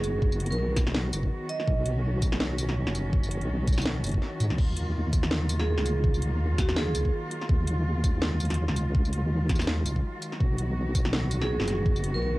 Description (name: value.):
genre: half-time drum and bass.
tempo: 165 BPM.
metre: 4/4.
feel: swing 56% on 16ths, half-time.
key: Eb minor.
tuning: A4 = 444 Hz.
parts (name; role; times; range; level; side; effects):
vibraphone with hard mallets; melody; 0.0-1.9, 5.6-7.1, 11.4-12.3 s; Gb4 to D#5; -34 LUFS; right 3 dB; cassette tape, analog delay.
warm symphonic cello section; sustained chords; 0.0-12.4 s; D#3 to Gb4; -34 LUFS; equal; vintage 12-bit sampler grit, sidechain pumping, cassette tape.
deep soft wobble bass; bass; 0.0-12.4 s; F#1 to Ab2; -27 LUFS; equal; chorus.
drum and bass drum kit; drums; 0.0-12.1 s; crash cymbal, hi-hat, snare drum, tambourine; -31 LUFS; equal; cassette tape.
electronic kick drum; drums; 0.2-11.9 s; none; -26 LUFS; equal; cassette tape.
room: light reverb.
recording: home recording on cassette.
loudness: -24 LUFS.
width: side -19 dB against mid.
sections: 0.0-12.4 A section.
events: none.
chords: 0.0 B; 4.6 Ebmadd9; 10.4 B.